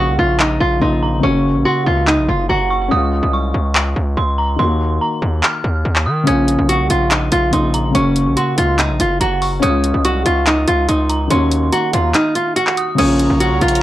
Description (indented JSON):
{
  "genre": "hip hop, trap",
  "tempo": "143 BPM",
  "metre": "4/4",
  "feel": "half-time",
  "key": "Bb minor",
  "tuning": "A4 = 440 Hz",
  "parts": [
    { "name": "nylon-string guitar", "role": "melody", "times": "0.0-2.9, 6.3-13.8 s", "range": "Db4 to Gb4", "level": "-16 LUFS", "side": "right 1 dB", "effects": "low-pass filter, analog delay" },
    { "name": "dark detuned synth bell", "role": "second line", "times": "0.0-13.8 s", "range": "Bb5 to F6", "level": "-23 LUFS", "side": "right 1 dB", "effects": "chorus, analog delay" },
    { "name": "dark baby grand piano", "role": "accompaniment", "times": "0.0-13.8 s", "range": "Db3 to Gb4", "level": "-21 LUFS", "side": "left 2 dB", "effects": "low-pass filter" },
    { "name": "distorted 808-style bass", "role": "bass", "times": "0.0-13.8 s", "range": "Gb1 to Eb3", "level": "-18 LUFS", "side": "equal", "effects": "distortion" },
    { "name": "trap drum kit", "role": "drums", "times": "0.4-13.8 s", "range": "crash cymbal, handclaps, hi-hat", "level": "-19 LUFS", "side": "equal", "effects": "none" },
    { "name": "dark chamber string section", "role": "sustained chords", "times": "13.0-13.8 s", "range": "F4 to Bb5", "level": "-25 LUFS", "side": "left 1 dB", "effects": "none" }
  ],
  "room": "small room ambience",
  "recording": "dry, gritty hardware recording, cassette tape",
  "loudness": "-13 LUFS",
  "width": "side -14 dB against mid",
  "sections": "0.0-13.0 A section",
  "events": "break 0.0-6.3; kick muted 12.1-13.0",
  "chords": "0.0 Bbm; 1.2 Gb; 2.9 Db; 4.6 Ebm; 6.3 Bbm; 7.9 Gb; 9.6 Db; 11.3 Ebm; 13.0 Bbm",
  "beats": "0.40 0.82 | 1.24 1.66 2.08 2.49 | 2.91 3.33 3.75 4.17 | 4.59 5.01 5.43 5.85 | 6.27 6.69 7.11 7.53 | 7.95 8.37 8.79 9.21 | 9.63 10.05 10.47 10.89 | 11.30 11.72 12.14 12.56 | 12.98 13.40 13.82"
}